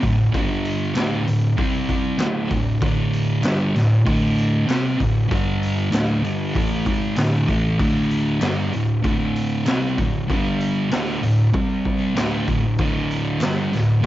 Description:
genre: garage rock duo or trio.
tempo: 96 BPM.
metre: 4/4.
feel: straight.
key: unclear.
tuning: A4 = 439 Hz.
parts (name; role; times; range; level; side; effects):
thick fuzz guitar; riff; 0.0-14.1 s; D2 to C4; -19 LUFS; equal; distortion, cassette tape.
raw garage drum kit; drums; 0.0-14.1 s; hi-hat, kick drum, snare drum; -25 LUFS; equal; cassette tape.
group handclap; percussion; 1.0-13.6 s; none; -38 LUFS; left 3 dB; none.
room: light reverb, small room ambience.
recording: home recording on cassette, nothing above 7.6 kHz.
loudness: -18 LUFS.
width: side -14 dB against mid.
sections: 0.0-14.1 A section.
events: none.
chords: 0.3 G5; 1.0 D5; 1.6 C5; 2.2 D5; 5.3 G5; 5.9 D5; 10.3 G5; 10.9 D5; 11.5 C5; 12.2 D5.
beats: | 0.34 0.96 1.58 2.20 | 2.82 3.44 4.06 4.69 | 5.31 5.93 6.55 7.18 | 7.80 8.42 9.05 9.67 | 10.29 10.92 11.54 12.17 | 12.79 13.42 14.04.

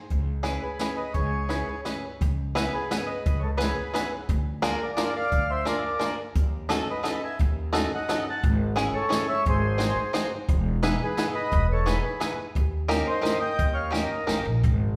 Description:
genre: musette waltz.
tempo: 174 BPM.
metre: 3/4.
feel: straight.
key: C# minor.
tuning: A4 = 441 Hz.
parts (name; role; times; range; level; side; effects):
upright bass; bass; 0.1-15.0 s; E1 to D#2; -31 LUFS; equal; none.
jazz brush drum kit; drums; 0.1-14.7 s; hi-hat, kick drum, snare drum; -31 LUFS; equal; none.
bluegrass banjo; accompaniment; 0.4-14.5 s; G#3 to C#5; -32 LUFS; equal; none.
mellow accordion; melody; 0.6-14.4 s; G#4 to A5; -31 LUFS; equal; none.
room: wet recital hall reverb, RT60 1.3 s.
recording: recorded in a church or concert hall.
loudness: -26 LUFS.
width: mono.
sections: 0.0-2.2 A section; 2.2-15.0 A section.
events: none.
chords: 0.1 C#m7; 4.3 A#7/D; 6.4 D#m7b5; 8.4 C#m/G#; 9.4 G#7; 10.5 Emaj7; 12.6 D#7.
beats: | 0.10 0.44 0.79 | 1.14 1.49 1.84 | 2.20 2.55 2.90 | 3.25 3.59 3.94 | 4.28 4.62 4.97 | 5.31 5.66 6.00 | 6.35 6.70 7.04 | 7.39 7.73 8.08 | 8.42 8.76 9.10 | 9.45 9.79 10.14 | 10.48 10.83 11.18 | 11.52 11.86 12.21 | 12.55 12.89 13.24 | 13.58 13.93 14.28 | 14.63.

